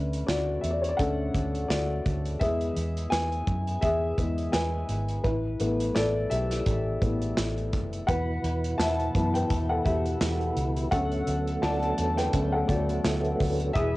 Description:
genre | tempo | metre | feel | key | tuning
piano-driven pop | 85 BPM | 4/4 | swing 56% on 16ths | B minor | A4 = 435 Hz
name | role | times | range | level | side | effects
dark upright piano | accompaniment | 0.0-14.0 s | D3 to A5 | -28 LUFS | left 2 dB | cassette tape
vintage muted fingered electric bass | bass | 0.0-14.0 s | E1 to F#2 | -30 LUFS | equal | none
modern studio drum kit | drums | 0.1-13.9 s | hi-hat, kick drum, snare drum | -31 LUFS | equal | cassette tape
percussive tonewheel organ | sustained chords | 8.1-14.0 s | B2 to G#4 | -32 LUFS | right 1 dB | overdrive, chorus vibrato, slow rotary speaker, cassette tape
room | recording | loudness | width
moderate booth ambience, RT60 0.2 s | home recording on cassette, nothing above 10.3 kHz | -25 LUFS | side -19 dB against mid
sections
0.0-14.0 A section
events
upright piano solo 0.0-14.0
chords
0.0 Bm7/D; 2.4 E; 5.2 Asus2; 8.1 Esus2; 10.9 Bm7/D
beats
0.28 0.99 1.70 | 2.41 3.12 3.83 4.54 | 5.25 5.96 6.67 7.38 | 8.09 8.79 9.50 10.21 | 10.92 11.63 12.34 13.05 | 13.75

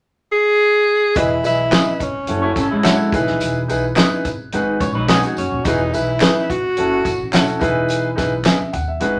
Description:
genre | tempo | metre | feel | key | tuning
uptempo 1960s-style soul | 107 BPM | 4/4 | straight | E major | A4 = 440 Hz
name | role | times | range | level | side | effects
breathy tenor saxophone | melody | 0.3-7.3 s | C#4 to G#4 | -20 LUFS | equal | none
warm upright piano | accompaniment | 1.1-9.2 s | G#2 to F#5 | -23 LUFS | equal | none
tambourine and handclaps | percussion | 1.1-9.1 s | none | -32 LUFS | equal | none
upright bass | bass | 1.2-9.2 s | D#1 to G#2 | -28 LUFS | equal | none
natural country drum kit | drums | 1.2-9.1 s | hi-hat, kick drum, snare drum | -22 LUFS | equal | none
electric guitar through a small old amp | stabs | 1.7-8.6 s | B3 to E5 | -23 LUFS | equal | tremolo
electric guitar through a small old amp | riff | 2.4-5.6 s | G#3 to C#5 | -23 LUFS | equal | spring reverb
room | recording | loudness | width
moderate studio reverb, RT60 0.5 s | none | -17 LUFS | mono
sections
0.0-1.2 A section; 1.2-9.2 B section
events
none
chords
0.0 N.C.; 1.2 Emaj7; 2.3 F#m7; 3.1 Emaj7; 4.5 G#m7; 5.7 Emaj7; 6.8 F#m7; 7.6 Emaj7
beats
0.03 0.59 | 1.16 1.72 2.28 2.84 | 3.41 3.97 4.53 5.09 | 5.65 6.21 6.78 7.34 | 7.90 8.46 9.02

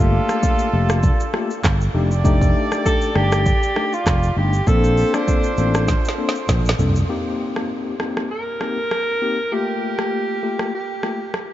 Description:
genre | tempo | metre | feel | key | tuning
afrobeats | 99 BPM | 4/4 | swing 55% on 16ths | unclear | A4 = 440 Hz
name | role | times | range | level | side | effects
warm alto saxophone | melody | 0.0-11.5 s | D4 to Bb4 | -24 LUFS | right 1 dB | analog delay
clear horn section | second line | 0.0-6.8 s | D4 to D5 | -28 LUFS | right 3 dB | analog delay
tine electric piano | accompaniment | 0.0-11.2 s | A3 to A4 | -24 LUFS | left 5 dB | medium tremolo
sustaining fretless electric bass | bass | 0.0-7.0 s | F1 to C2 | -18 LUFS | equal | none
afro-pop drum kit | drums | 0.3-11.5 s | handclaps, hi-hat, kick drum, rim click, shaker, snare drum, toms | -21 LUFS | equal | none
room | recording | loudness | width
light reverb, digital ambience | nothing above 7.7 kHz | -17 LUFS | side -13 dB against mid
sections
0.0-7.1 A section; 7.1-11.5 B section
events
drum fill 5.9-7.1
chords
0.0 Gm9; 1.9 F13; 4.7 Bbmaj9; 7.1 Cm7; 9.5 Gm9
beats
0.43 1.03 1.64 | 2.25 2.85 3.46 4.07 | 4.67 5.28 5.88 6.49 | 7.09 7.70 8.31 8.91 | 9.52 10.13 10.73 11.34

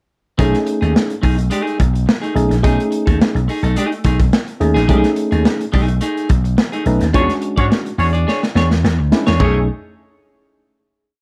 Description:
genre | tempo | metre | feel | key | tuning
funk | 106 BPM | 4/4 | straight | B mixolydian | A4 = 440 Hz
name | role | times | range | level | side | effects
clean electric guitar | accompaniment | 0.4-9.6 s | A3 to D5 | -24 LUFS | equal | none
tine electric piano | stabs | 0.4-9.7 s | G#3 to B4 | -21 LUFS | equal | overdrive
vintage slap bass | bass | 0.4-9.7 s | A#1 to G#2 | -19 LUFS | equal | none
crunchy breakbeat drum kit | drums | 0.4-9.5 s | china cymbal, hi-hat, kick drum, snare drum, toms | -19 LUFS | equal | none
clear horn section | second line | 7.2-9.6 s | G#3 to C#5 | -24 LUFS | equal | slapback echo
room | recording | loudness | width
light reverb | none | -16 LUFS | mono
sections
0.4-9.4 A section; 9.4-11.2 final chord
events
band accent 7.1-9.4; drum fill 8.3-9.4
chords
0.4 B13; 7.1 E13; 9.4 B13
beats
| 0.39 0.95 1.51 2.08 | 2.64 3.20 3.76 4.33 | 4.89 5.45 6.02 6.58 | 7.14 7.71 8.28 8.84 | 9.41

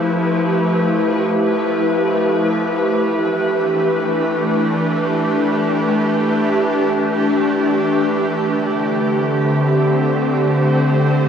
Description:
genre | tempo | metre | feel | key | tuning
ambient | free time | none | none | unclear | A4 = 435 Hz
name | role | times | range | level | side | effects
evolving wavetable pad | solo | 0.0-11.3 s | D3 to C5 | -15 LUFS | equal | ensemble chorus, built-in reverb, diffuse ambient delay
room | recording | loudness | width
wet shimmer reverb, RT60 7.3 s | worn, warbling old tape, cassette tape, warbly pitch drift | -15 LUFS | side -7 dB against mid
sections
0.0-11.3 A section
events
none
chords
0.0 Fmaj9#11; 2.9 A9sus4; 8.4 D7sus4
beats
free time

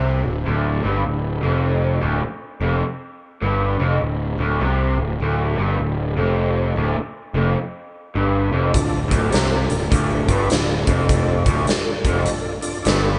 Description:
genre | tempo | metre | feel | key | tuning
blues rock power trio and southern rock | 102 BPM | 4/4 | swing 63% on 8ths | D minor | A4 = 439 Hz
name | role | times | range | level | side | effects
raw garage guitar | riff | 0.0-13.2 s | D2 to C3 | -26 LUFS | equal | overdrive, spring reverb
fuzz picked electric bass | bass | 0.0-13.2 s | D1 to C2 | -23 LUFS | equal | overdrive
tonewheel organ | sustained chords | 8.7-13.1 s | D4 to D5 | -30 LUFS | equal | slow rotary speaker, overdrive, chorus vibrato
huge arena drum kit | drums | 8.7-13.0 s | hi-hat, kick drum, snare drum | -23 LUFS | equal | none
room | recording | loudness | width
moderate studio ambience, RT60 0.5 s | band playing live in one room, nothing above 10.3 kHz | -20 LUFS | mono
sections
0.0-13.2 A section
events
none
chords
0.0 Dm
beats
0.47 1.06 | 1.65 2.24 2.84 3.43 | 4.02 4.61 5.21 5.80 | 6.39 6.98 7.57 8.16 | 8.75 9.34 9.93 10.52 | 11.10 11.69 12.28 12.86

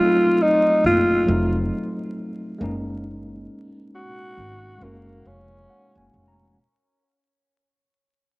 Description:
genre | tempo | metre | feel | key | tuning
lo-fi hip hop | 68 BPM | 4/4 | swing 58% on 16ths | unclear | A4 = 440 Hz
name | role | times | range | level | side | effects
growling tenor saxophone | melody | 0.0-6.1 s | Bb3 to Gb4 | -19 LUFS | equal | low-pass filter, cassette tape
tine electric piano | accompaniment | 0.0-6.6 s | Gb3 to Bb5 | -26 LUFS | equal | medium stereo tremolo, cassette tape, low-pass filter
upright bass | bass | 0.8-6.5 s | F1 to Ab1 | -26 LUFS | equal | none
room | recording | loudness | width
light reverb, studio reverb | home recording on cassette, vinyl crackle | -18 LUFS | side -24 dB against mid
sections
0.0-6.6 A section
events
fade-out 0.0-6.6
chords
0.0 F7b9; 2.6 Gb69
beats
0.39 1.27 2.15 | 3.04 3.92 4.80 5.68

